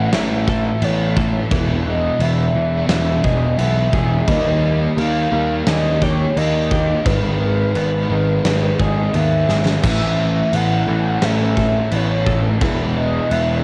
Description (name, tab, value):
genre	rock, shoegaze and dream pop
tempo	86 BPM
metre	4/4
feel	straight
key	A lydian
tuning	A4 = 439 Hz
part	mellow horn-like synth lead	melody	0.0-13.6 s	B4 to F#5	-25 LUFS	equal	chorus, tape echo
part	semi-hollow electric guitar	arpeggios	0.0-13.6 s	D#3 to A4	-30 LUFS	equal	analog chorus, cassette tape, tape echo
part	sludgy distorted guitar	riff	0.0-13.6 s	E2 to D#4	-30 LUFS	equal	none
part	thick fuzz guitar	riff	0.0-13.6 s	E2 to D#4	-25 LUFS	equal	distortion, ensemble chorus, cassette tape
part	fuzz picked electric bass	bass	0.0-13.6 s	E1 to D#2	-22 LUFS	equal	overdrive
part	big rock drum kit	drums	0.1-13.5 s	crash cymbal, kick drum, snare drum	-25 LUFS	equal	cassette tape
part	overdriven semi-hollow guitar	riff	9.8-13.6 s	A2 to E4	-30 LUFS	equal	none
room	small room ambience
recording	home recording on cassette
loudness	-18 LUFS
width	mono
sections	0.0-13.6 A section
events	drum fill 9.5-9.8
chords	0.0 Aadd9; 1.5 E; 4.3 D#7; 7.1 G#m; 9.8 Aadd9; 12.6 E